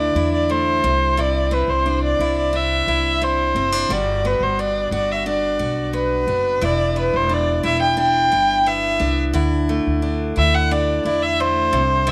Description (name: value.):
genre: acoustic pop.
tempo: 88 BPM.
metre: 4/4.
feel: straight.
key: unclear.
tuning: A4 = 445 Hz.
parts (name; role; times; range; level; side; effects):
warm violin; melody; 0.0-12.1 s; B4 to G5; -21 LUFS; equal; none.
picked steel-string acoustic guitar; accompaniment; 0.0-12.1 s; E2 to F#4; -26 LUFS; equal; none.
upright bass; bass; 0.0-12.1 s; E1 to E2; -26 LUFS; equal; none.
room: moderate spring reverb, RT60 1.1 s, small room ambience.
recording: none.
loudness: -19 LUFS.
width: mono.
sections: 0.0-12.1 A section.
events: none.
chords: 0.0 Dsus2; 0.8 Cadd9; 3.9 Gmaj7; 6.6 Em7; 9.3 Dsus2.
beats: 0.49 | 1.17 1.85 2.54 3.22 | 3.90 4.58 5.26 5.94 | 6.62 7.30 7.98 8.66 | 9.35 10.03 10.71 11.39 | 12.07.